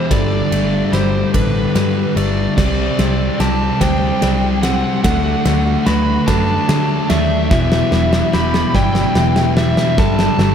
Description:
post-rock; 49 BPM (dotted quarters); 6/8; straight; G major; A4 = 441 Hz
overdriven slide guitar; melody; 0.0-10.5 s; B4 to B5; -21 LUFS; equal; analog delay
pedal steel guitar; sustained chords; 0.0-10.5 s; C3 to A4; -29 LUFS; right 1 dB
felt-muted upright piano; arpeggios; 0.0-10.5 s; A4 to B5; -30 LUFS; right 5 dB; analog delay
twangy electric guitar; arpeggios; 0.0-10.5 s; E2 to G4; -27 LUFS; left 2 dB; analog delay
thick fuzz guitar; riff; 0.0-10.5 s; E2 to D4; -18 LUFS; left 2 dB; distortion
vintage muted picked electric bass; bass; 0.1-10.5 s; E1 to D3; -20 LUFS; equal
huge arena drum kit; drums; 0.1-10.5 s; crash cymbal, kick drum, ride cymbal, snare drum; -19 LUFS; equal
moderate concert hall reverb, RT60 2.0 s, studio reverb; big arena sound; -13 LUFS; side -8 dB against mid
0.0-10.5 A section
build-up 0.0-10.5; drum fill 0.0-10.5
0.1 Gsus2; 2.6 Csus2; 5.0 D; 7.5 Em; 10.0 Gsus2
| 0.11 1.35 | 2.58 3.81 | 5.05 6.28 | 7.52 8.75 | 9.98

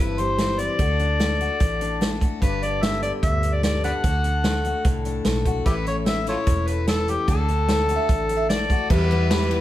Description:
honky-tonk and classic country; 148 BPM; 4/4; straight; A4 = 440 Hz
overdriven harmonica; melody; 0.0-9.6 s; E4 to F#5; -25 LUFS; left 2 dB
picked steel-string acoustic guitar; accompaniment; 0.0-9.6 s; E2 to G4; -28 LUFS; left 3 dB
vintage muted fingered electric bass; bass; 0.0-9.6 s; E1 to E2; -25 LUFS; right 1 dB
vintage drum kit; drums; 0.2-9.6 s; crash cymbal, hi-hat, kick drum, ride cymbal, snare drum; -23 LUFS; right 1 dB
lap resonator guitar; second line; 8.0-8.8 s; D5 to E5; -28 LUFS; right 4 dB
warm concert grand piano; accompaniment; 8.9-9.6 s; G4 to E5; -35 LUFS; right 5 dB
clear studio string section; sustained chords; 8.9-9.6 s; E3 to B4; -30 LUFS; left 1 dB
wet studio reverb, RT60 0.6 s; heard from further back in the room; -19 LUFS; side -13 dB against mid
0.0-8.9 A section
0.0 C; 0.8 D; 2.4 G; 4.0 D; 5.7 A; 7.3 D; 8.9 Em
0.39 | 0.79 1.20 1.60 2.01 | 2.42 2.82 3.23 3.63 | 4.04 4.44 4.85 5.25 | 5.66 6.07 6.47 6.88 | 7.28 7.68 8.09 8.49 | 8.90 9.30

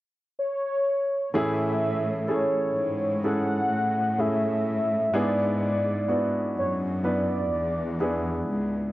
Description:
pop; 63 BPM; 4/4; straight; A major; A4 = 439 Hz
warm velvety synth lead; melody; 0.4-8.4 s; C#5 to F#5; -27 LUFS; equal; chorus, cassette tape, plate reverb
clear baby grand piano; accompaniment; 1.3-8.9 s; G#2 to B4; -27 LUFS; equal; cassette tape, plate reverb
rich chamber cello section; bass; 1.3-8.9 s; C#2 to A2; -29 LUFS; equal
moderate studio reverb, RT60 0.7 s; home recording on cassette; -23 LUFS; side -16 dB against mid
0.0-1.3 A section; 1.3-8.9 B section
0.0 N.C.; 1.3 Amaj7; 5.1 E7
0.38 | 1.33 2.29 3.24 4.19 | 5.14 6.09 7.05 8.00

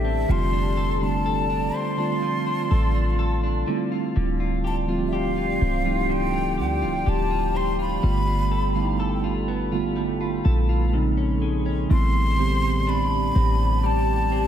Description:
R&B; 62 BPM; 4/4; straight; A minor; A4 = 440 Hz
breathy hollow jazz flute; melody; 0.0-14.5 s; E5 to C6; -28 LUFS; left 1 dB; tape echo
mellow tine electric piano; accompaniment; 0.0-14.5 s; Db3 to G4; -26 LUFS; right 4 dB; medium stereo tremolo
deep dark ambient pad; sustained chords; 0.0-14.5 s; F4 to C6; -30 LUFS; left 1 dB; chorus, built-in reverb
direct-recorded clean electric guitar; arpeggios; 0.0-14.5 s; A2 to A4; -32 LUFS; left 7 dB; lush chorus, tape echo
clean 808-style bass; bass; 0.0-14.5 s; C1 to D2; -24 LUFS; equal
moderate lush hall reverb, RT60 1.9 s; dreamy mix soaked in reverb; -20 LUFS; side -10 dB against mid
0.0-11.9 A section; 11.9-14.5 B section
0.3 F6; 3.7 Dm11; 8.0 G9; 10.9 Bbm11; 11.9 Am11
| 0.29 1.26 2.22 3.19 | 4.16 5.13 6.09 7.06 | 8.03 9.00 9.97 10.93 | 11.90 12.87 13.84

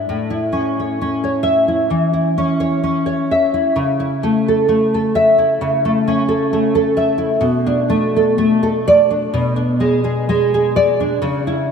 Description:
romantic piece for solo classical guitar; 65 BPM; 4/4; rubato; A major; A4 = 439 Hz
nylon-string guitar; solo; 0.0-11.7 s; A2 to E5; -14 LUFS; equal; analog chorus, ping-pong delay
wet plate reverb, RT60 2.9 s; dreamy mix soaked in reverb; -14 LUFS; side -6 dB against mid
0.0-11.7 A section
0.1 A; 3.8 A/C#; 7.4 Bm7; 9.3 G#dim/B
| 0.09 1.00 1.91 2.84 | 3.76 4.67 5.61 6.53 | 7.45 8.39 9.33 10.27 | 11.22

